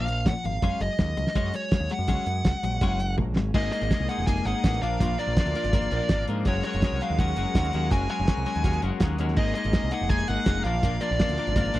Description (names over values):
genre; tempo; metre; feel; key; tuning
indie rock; 164 BPM; 4/4; straight; unclear; A4 = 440 Hz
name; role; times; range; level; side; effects
fuzz lead guitar; melody; 0.0-11.8 s; Db5 to Ab5; -29 LUFS; right 1 dB; distortion, slapback echo
twelve-string electric guitar; riff; 0.0-11.8 s; Bb2 to Bb4; -30 LUFS; left 6 dB; none
twelve-string electric guitar; riff; 0.0-11.8 s; F3 to Bb4; -42 LUFS; right 6 dB; analog chorus, slapback echo
growling picked electric bass; bass; 0.0-11.8 s; F1 to Bb2; -28 LUFS; right 1 dB; overdrive
cloth-damped thuddy drum kit; drums; 0.1-11.8 s; crash cymbal, hi-hat, kick drum, snare drum, toms; -25 LUFS; right 1 dB; none
ensemble organ-string; sustained chords; 3.6-11.8 s; Ab4 to Eb6; -42 LUFS; equal; ensemble chorus
room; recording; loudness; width
little or no reverb; dry, close 1970s-style studio recording; -23 LUFS; side -15 dB against mid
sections
0.0-3.5 A section; 3.5-11.8 B section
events
drum fill 3.2-3.5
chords
0.0 Bb; 0.6 Gbadd9; 3.5 Absus2; 4.8 Bb; 6.5 Gbadd9; 9.4 Absus2; 10.7 Bb